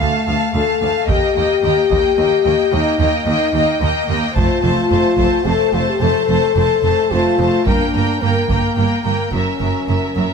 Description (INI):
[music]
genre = cinematic, epic orchestral film score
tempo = 109 BPM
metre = 3/4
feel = straight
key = unclear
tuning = A4 = 441 Hz
[part]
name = clear studio violin section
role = melody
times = 0.0-10.3 s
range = E5 to A5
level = -24 LUFS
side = left 1 dB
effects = none
[part]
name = warm symphonic violin section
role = second line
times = 0.0-10.3 s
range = Bb4 to F5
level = -22 LUFS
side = left 1 dB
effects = none
[part]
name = rich symphonic viola section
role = accompaniment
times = 0.0-10.3 s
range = F#3 to Bb3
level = -24 LUFS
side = right 1 dB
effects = none
[part]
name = mellow French horn section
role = sustained chords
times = 0.0-10.3 s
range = A3 to A4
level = -18 LUFS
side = left 6 dB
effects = none
[part]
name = rich studio double bass section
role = bass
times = 0.0-10.2 s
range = F1 to Eb2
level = -23 LUFS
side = right 5 dB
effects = none
[part]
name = rich symphonic cello section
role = bass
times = 0.0-10.2 s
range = D2 to G2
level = -22 LUFS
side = right 4 dB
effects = none
[part]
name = solo taiko drums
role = drums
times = 1.1-8.8 s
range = none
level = -22 LUFS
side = right 1 dB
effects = none
[sound]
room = moderate concert hall reverb, RT60 2.0 s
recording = close, detailed microphones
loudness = -14 LUFS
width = side -6 dB against mid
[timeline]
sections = 0.0-10.3 A section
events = none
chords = 0.0 Dm; 1.1 Eb; 4.4 F; 7.7 Gm; 9.3 F#7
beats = 0.00 0.55 | 1.09 1.64 2.18 | 2.73 3.27 3.82 | 4.37 4.92 5.46 | 6.01 6.56 7.12 | 7.67 8.22 8.77 | 9.33 9.89